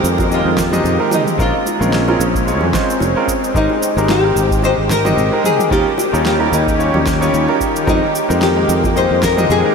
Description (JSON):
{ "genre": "sunset chillout", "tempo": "111 BPM", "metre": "4/4", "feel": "swing 56% on 16ths", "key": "Ab major", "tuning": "A4 = 440 Hz", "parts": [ { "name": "nylon-string guitar", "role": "melody", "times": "0.0-9.7 s", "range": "Eb4 to C5", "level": "-19 LUFS", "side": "left 2 dB", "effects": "lush chorus, analog delay" }, { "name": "clear concert grand piano", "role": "accompaniment", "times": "0.0-9.7 s", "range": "G3 to Eb5", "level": "-19 LUFS", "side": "right 1 dB", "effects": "auto-pan, ping-pong delay" }, { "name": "lush unison pad", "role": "sustained chords", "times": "0.0-9.7 s", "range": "Eb3 to G4", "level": "-19 LUFS", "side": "equal", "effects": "chorus, phaser" }, { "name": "sustaining fretless electric bass", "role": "bass", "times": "0.0-9.6 s", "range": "F1 to F2", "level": "-18 LUFS", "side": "equal", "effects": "tube saturation" }, { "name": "deep house drum kit", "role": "drums", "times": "0.0-9.6 s", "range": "cabasa, snare drum, toms", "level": "-24 LUFS", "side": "right 1 dB", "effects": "overdrive" }, { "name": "electronic kick drum", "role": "drums", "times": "0.2-9.3 s", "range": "none", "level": "-22 LUFS", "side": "equal", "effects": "none" }, { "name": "bongos", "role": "percussion", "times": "0.2-9.5 s", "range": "none", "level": "-28 LUFS", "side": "right 2 dB", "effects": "none" } ], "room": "wet huge ambient reverb, RT60 8.2 s", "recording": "dreamy mix soaked in reverb", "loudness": "-12 LUFS", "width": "side -5 dB against mid", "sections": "0.0-9.7 A section", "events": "none", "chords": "0.0 Fm11; 1.4 Bbm9; 3.6 Abmaj7; 5.7 Eb7; 7.9 Fm11" }